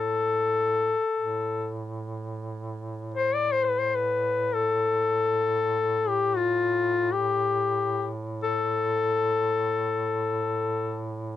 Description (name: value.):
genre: caucasian folk, Caucasian lament.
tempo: free time.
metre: none.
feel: none.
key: A minor.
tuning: A4 = 441 Hz.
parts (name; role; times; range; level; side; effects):
clear duduk; melody; 0.0-11.1 s; F4 to D5; -24 LUFS; left 4 dB; cassette tape.
warm duduk; drone; 0.0-11.4 s; A2; -34 LUFS; right 2 dB; stereo widening, cassette tape.
room: wet booth ambience, RT60 0.2 s.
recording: home recording on cassette.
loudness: -24 LUFS.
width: side -12 dB against mid.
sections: 0.0-11.4 A section.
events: slowing down 8.7-11.4.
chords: none.